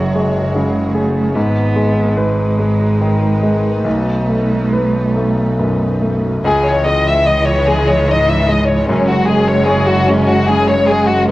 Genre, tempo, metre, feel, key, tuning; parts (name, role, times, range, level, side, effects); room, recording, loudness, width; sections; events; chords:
neoclassical piano and strings; 69-75 BPM; 3/4; rubato; C# minor; A4 = 445 Hz
rich cello; second line; 0.0-11.3 s; E3 to B3; -20 LUFS; right 4 dB; cassette tape
bright grand piano; accompaniment; 0.0-11.3 s; B1 to D#5; -18 LUFS; left 1 dB; cassette tape
rich studio string section; sustained chords; 0.0-11.3 s; G#3 to D#5; -26 LUFS; right 1 dB; cassette tape
clear double bass; bass; 0.0-11.3 s; F#1 to C#2; -18 LUFS; equal
rich chamber violin section; melody; 6.5-11.3 s; B3 to E5; -14 LUFS; left 2 dB
light reverb; home recording on cassette; -12 LUFS; side -17 dB against mid
0.0-6.4 A section; 6.4-11.3 A section
0.0 F#sus2; 1.4 G#m; 3.9 B7; 6.4 C#madd9; 8.9 F#sus2